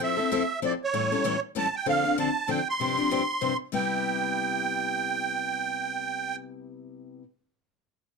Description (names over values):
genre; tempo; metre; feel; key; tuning
jazz; 193 BPM; 3/4; swing 59% on 8ths; C major; A4 = 440 Hz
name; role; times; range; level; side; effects
musette accordion; melody; 0.0-6.4 s; Db5 to C6; -27 LUFS; right 5 dB; none
picked steel-string acoustic guitar; accompaniment; 0.0-7.2 s; G2 to A4; -30 LUFS; left 6 dB; none
room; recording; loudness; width
moderate club reverb, RT60 0.5 s; dark, warm production; -25 LUFS; side -4 dB against mid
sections
0.0-3.7 A section; 3.7-5.6 B section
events
none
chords
0.0 Fmaj7; 0.9 A7; 1.9 Dm7; 2.8 G7sus4; 3.7 Cmaj7